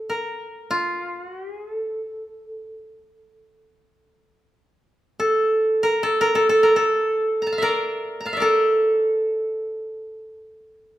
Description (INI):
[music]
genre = japanese traditional, Japanese chamber music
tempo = free time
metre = none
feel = none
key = A miyako bushi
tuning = A4 = 440 Hz
[part]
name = koto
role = solo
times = 0.0-10.4 s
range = A4 to Bb5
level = -20 LUFS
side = equal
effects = none
[sound]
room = wet recital hall reverb, RT60 1.5 s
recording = minimal, uncompressed stereo recording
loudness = -19 LUFS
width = side -14 dB against mid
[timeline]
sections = 0.0-11.0 A section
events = none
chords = none